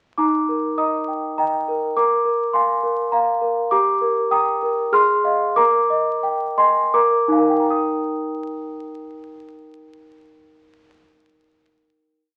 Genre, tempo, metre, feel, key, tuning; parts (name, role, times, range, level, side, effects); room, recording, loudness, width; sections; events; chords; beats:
classical, lullaby for celesta; 78-104 BPM; 3/4; rubato; Eb major; A4 = 440 Hz
celesta; solo; 0.2-12.4 s; Eb4 to F6; -20 LUFS; equal
moderate club reverb, RT60 0.8 s; very old 78 rpm record, vinyl crackle; -19 LUFS; mono
0.2-7.7 A section; 7.7-12.3 final chord
slowing down 2.8-7.7
0.2 Eb; 2.0 Bb; 3.7 Eb/G; 4.9 Fm7/Ab; 5.6 Eb/Bb; 6.9 Bb7; 7.7 Eb
| 0.18 0.78 1.38 | 1.96 2.54 3.13 | 3.72 4.32 4.93 | 5.58 6.25 6.95 | 7.70 8.46 9.22 | 9.98 10.73 11.49